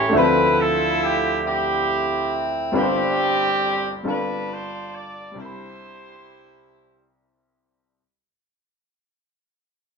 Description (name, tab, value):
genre	slow gospel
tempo	46 BPM (dotted quarters)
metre	6/8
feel	straight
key	C major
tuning	A4 = 440 Hz
part	clear horn section	melody	0.0-7.1 s	C4 to D5	-21 LUFS	right 1 dB	none
part	clear upright piano	accompaniment	0.0-8.0 s	G1 to B5	-23 LUFS	left 1 dB	none
room	moderate large studio reverb, RT60 1.0 s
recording	band playing live in one room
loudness	-18 LUFS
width	side -5 dB against mid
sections	0.0-8.0 A section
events	fade-out 0.0-8.0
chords	0.1 Dm9; 2.7 G7sus4; 4.0 G9sus4; 5.4 Cmaj9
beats	| 0.13 1.44 | 2.74 4.05 | 5.36 6.67